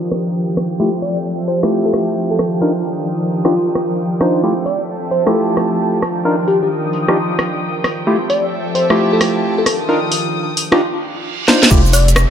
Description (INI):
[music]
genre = UK garage, two-step garage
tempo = 132 BPM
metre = 4/4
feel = swing 66% on 16ths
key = F major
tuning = A4 = 440 Hz
[part]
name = warm analog pad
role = sustained chords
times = 0.0-12.3 s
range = Eb3 to E5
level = -24 LUFS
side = equal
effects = chorus, tremolo, sidechain pumping
[part]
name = dark chamber string section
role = texture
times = 0.0-10.8 s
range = F3 to Eb6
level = -22 LUFS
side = equal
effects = sidechain pumping
[part]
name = garage drum kit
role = drums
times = 0.1-12.3 s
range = hi-hat, rim click, snare drum, woodblock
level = -17 LUFS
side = equal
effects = low-pass filter on snare, low-pass filter on hats, low-pass filter on perc, low-pass filter on room
[part]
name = percussive organ stab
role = stabs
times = 0.8-11.8 s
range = A3 to C5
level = -18 LUFS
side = equal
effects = chorus, diffuse ambient delay
[part]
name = bell-like FM electric piano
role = melody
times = 1.0-12.1 s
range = F4 to D5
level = -20 LUFS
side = left 1 dB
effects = chorus, diffuse ambient delay
[part]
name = reverse cymbal and downlifter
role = sound effects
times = 11.0-12.3 s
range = none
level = -22 LUFS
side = right 6 dB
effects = none
[part]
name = saturated sub bass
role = bass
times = 11.7-12.3 s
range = F1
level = -12 LUFS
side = equal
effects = none
[part]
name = electronic kick drum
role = drums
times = 11.7-11.8 s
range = none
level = -12 LUFS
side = equal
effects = none
[part]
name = egg shaker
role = percussion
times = 11.7-12.3 s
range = none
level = -24 LUFS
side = right 4 dB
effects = none
[sound]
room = wet plate reverb, RT60 2.2 s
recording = dreamy mix soaked in reverb, low-pass filter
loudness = -13 LUFS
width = side -8 dB against mid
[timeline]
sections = 0.0-11.7 A section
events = filter sweep on drum 0.0-11.7; filter sweep on synth stab 0.0-11.7; filter sweep 0.0-11.7; reverse cymbal 11.0-11.7; drum fill 11.5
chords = 0.0 Ebmaj9; 0.8 Fmaj9; 2.4 Ebmaj9; 4.4 Fmaj9; 6.0 Ebmaj9; 8.1 Fmaj9; 9.7 Ebmaj9; 11.7 Fmaj9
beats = 0.34 | 0.80 1.25 1.71 2.16 | 2.62 3.07 3.52 3.98 | 4.43 4.89 5.34 5.80 | 6.25 6.71 7.16 7.62 | 8.07 8.53 8.98 9.43 | 9.89 10.34 10.80 11.25 | 11.71 12.16